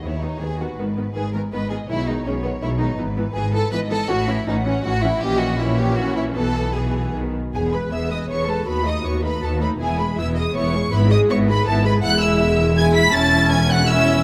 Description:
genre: quick classical-period movement for string orchestra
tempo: 161 BPM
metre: 3/4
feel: rubato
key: E major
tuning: A4 = 440 Hz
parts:
  - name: warm studio violin section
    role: melody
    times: 0.0-14.2 s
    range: B4 to B6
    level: -28 LUFS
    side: equal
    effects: none
  - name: rich studio violin section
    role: second line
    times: 0.0-14.2 s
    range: B3 to B5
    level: -28 LUFS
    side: equal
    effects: none
  - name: rich studio double bass section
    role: bass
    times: 0.0-14.2 s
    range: E1 to D#2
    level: -26 LUFS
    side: equal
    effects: none
  - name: rich studio viola section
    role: accompaniment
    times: 0.1-14.2 s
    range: D#3 to B4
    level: -26 LUFS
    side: equal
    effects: none
  - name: rich studio cello section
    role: bass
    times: 0.1-14.2 s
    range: D#2 to B2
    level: -27 LUFS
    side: equal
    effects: none
room: moderate scoring stage reverb, RT60 2.0 s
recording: none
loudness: -20 LUFS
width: mono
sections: 0.0-7.5 A section; 7.5-14.2 B section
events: none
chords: 0.0 B/D#; 0.8 G#m; 1.9 G#m/B; 3.0 E/G#; 4.1 F#m7/A; 5.2 A#dim; 6.4 E/B; 7.2 B; 7.5 E; 8.7 B7/D#; 9.8 E; 10.9 E/G#; 12.0 E; 13.1 A/E

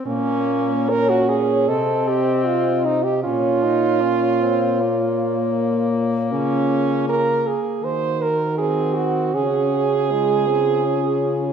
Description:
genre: classical, lyrical piece for horn quartet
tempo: 78 BPM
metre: 4/4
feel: rubato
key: Bb minor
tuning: A4 = 440 Hz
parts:
  - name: clear French horn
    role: accompaniment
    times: 0.0-11.5 s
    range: Ab3 to Eb4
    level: -24 LUFS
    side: left 4 dB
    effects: none
  - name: mellow French horn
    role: melody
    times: 0.1-11.5 s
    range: F4 to Eb5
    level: -26 LUFS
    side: left 6 dB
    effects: none
  - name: clear French horn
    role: second line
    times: 0.1-11.5 s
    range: Db4 to C5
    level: -20 LUFS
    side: right 6 dB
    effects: none
  - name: warm French horn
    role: bass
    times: 0.1-11.5 s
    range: Bb2 to Eb3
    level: -25 LUFS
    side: equal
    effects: none
room: moderate scoring stage reverb, RT60 1.6 s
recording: dark, warm production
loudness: -17 LUFS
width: side -7 dB against mid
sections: 0.1-11.5 A section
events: none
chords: 0.1 Bbm; 1.7 Cmadd11; 3.2 Bbm; 6.3 Db; 7.8 Cdim/Eb; 9.3 Db

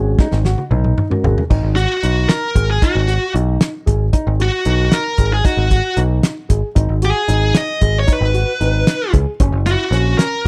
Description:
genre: progressive instrumental, band music in an uneven meter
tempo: 228 BPM (eighths)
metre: 5/8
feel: straight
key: G# minor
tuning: A4 = 442 Hz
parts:
  - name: mellow tonewheel organ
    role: accompaniment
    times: 0.0-1.4 s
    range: G#3 to A#4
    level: -24 LUFS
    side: equal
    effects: slow rotary speaker
  - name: dark grand piano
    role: arpeggios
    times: 0.0-10.5 s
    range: C#4 to G#4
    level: -27 LUFS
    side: equal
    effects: none
  - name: picked electric bass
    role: bass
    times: 0.0-10.5 s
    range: F#1 to C#2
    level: -19 LUFS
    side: equal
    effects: none
  - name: warm soul drum kit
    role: drums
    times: 0.2-10.5 s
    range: crash cymbal, hi-hat, kick drum, snare drum, toms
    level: -18 LUFS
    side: equal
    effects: none
  - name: high-gain lead guitar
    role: melody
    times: 1.8-10.5 s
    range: F#4 to D#5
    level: -21 LUFS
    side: equal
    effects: distortion
room: little or no reverb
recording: dry, close 1970s-style studio recording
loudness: -16 LUFS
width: mono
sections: 0.0-1.5 A section; 1.5-10.5 B section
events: drum fill 0.2-1.5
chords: 0.0 G#m9; 1.5 G#7(no3); 9.4 F#7

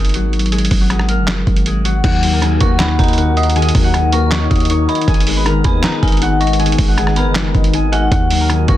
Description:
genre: hip hop, trap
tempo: 158 BPM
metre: 4/4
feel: half-time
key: Eb minor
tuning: A4 = 441 Hz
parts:
  - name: concert harp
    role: melody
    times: 0.0-8.8 s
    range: Eb3 to Eb6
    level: -20 LUFS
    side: left 2 dB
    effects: low-pass filter
  - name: hard-hitting 808-style bass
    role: bass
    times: 0.0-8.8 s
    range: Gb1 to Eb2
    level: -16 LUFS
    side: equal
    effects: none
  - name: lo-fi sampler-style drum kit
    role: drums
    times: 0.0-8.8 s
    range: crash cymbal, handclaps, hi-hat, kick drum, rim click, snare drum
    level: -16 LUFS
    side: equal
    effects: none
  - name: dark grand piano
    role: accompaniment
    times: 2.0-8.8 s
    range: Eb3 to Eb5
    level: -19 LUFS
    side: left 6 dB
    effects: low-pass filter
  - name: dark analog pad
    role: sustained chords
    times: 2.0-8.8 s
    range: Eb3 to Bb4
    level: -26 LUFS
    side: right 3 dB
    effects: chorus
  - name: dark detuned synth bell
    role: second line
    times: 2.6-8.8 s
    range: Ab5 to Eb6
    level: -25 LUFS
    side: right 4 dB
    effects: chorus, ping-pong delay
room: digital ambience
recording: dense, heavily limited modern master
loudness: -12 LUFS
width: side -13 dB against mid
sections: 0.0-2.0 A section; 2.0-8.8 B section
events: break 0.0-2.0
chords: 0.0 Ab5; 2.0 Ebm; 5.1 Abm; 8.1 Ebm

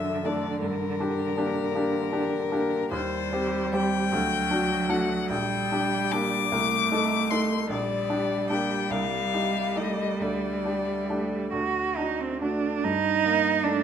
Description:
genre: classical, slow romantic movement for piano trio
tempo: 44-53 BPM (dotted quarters)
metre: 6/8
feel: rubato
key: G minor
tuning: A4 = 440 Hz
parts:
  - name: rich violin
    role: melody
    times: 0.0-11.5 s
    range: Bb4 to D6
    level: -28 LUFS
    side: left 8 dB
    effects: none
  - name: rich cello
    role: second line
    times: 0.0-13.8 s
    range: D3 to F#4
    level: -28 LUFS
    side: right 6 dB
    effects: none
  - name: bright baby grand piano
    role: accompaniment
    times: 0.0-13.8 s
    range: Bb1 to A4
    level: -28 LUFS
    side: equal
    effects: none
room: moderate recital hall reverb, RT60 1.3 s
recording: none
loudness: -24 LUFS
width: side -8 dB against mid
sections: 0.0-12.8 A section; 12.8-13.8 B section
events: none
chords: 0.0 D/F#; 0.6 Gm; 2.9 Cm/Eb; 4.1 D; 5.3 Gm/Bb; 6.5 Adim/C; 7.7 Gm/Bb; 8.9 Am7b5/C; 10.2 Dsus4; 11.5 D; 12.8 Gm

